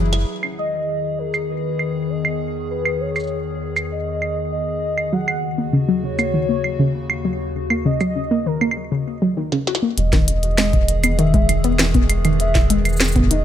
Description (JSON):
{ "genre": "IDM", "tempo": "99 BPM", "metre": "4/4", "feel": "straight", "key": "E lydian", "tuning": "A4 = 439 Hz", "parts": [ { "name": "warbly tape-like pad", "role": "sustained chords", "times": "0.0-13.4 s", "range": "D#2 to B4", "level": "-26 LUFS", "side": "left 3 dB", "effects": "chorus, built-in reverb, phaser" }, { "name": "warbly dusty pluck", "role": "arpeggios", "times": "0.0-0.1, 5.1-13.4 s", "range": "C#3 to F#4", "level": "-20 LUFS", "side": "left 1 dB", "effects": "chorus, ping-pong delay" }, { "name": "warm sub bass", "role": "bass", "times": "0.0-0.2, 10.0-13.4 s", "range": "E1 to F#1", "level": "-20 LUFS", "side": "equal", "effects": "tube saturation" }, { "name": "glitchy drum kit", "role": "drums", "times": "0.1-13.4 s", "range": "cabasa, claves, hi-hat, snare drum", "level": "-21 LUFS", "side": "right 2 dB", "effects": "low-pass filter on hats, low-pass filter on perc, low-pass filter on snare, low-pass filter on toms" }, { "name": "warm velvety synth lead", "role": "melody", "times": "0.6-13.4 s", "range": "A#4 to F#5", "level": "-26 LUFS", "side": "equal", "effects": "chorus, tape echo" }, { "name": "electronic kick drum", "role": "drums", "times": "10.1-13.3 s", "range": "none", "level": "-18 LUFS", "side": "equal", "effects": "none" } ], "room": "digital ambience", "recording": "none", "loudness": "-17 LUFS", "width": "side -10 dB against mid", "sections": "0.3-10.0 A section; 10.0-13.4 B section", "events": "drum fill 0.0, 9.5-10.0; band accent 0.1-0.4", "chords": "0.3 Emaj7; 5.1 D#m7; 10.0 Emaj7" }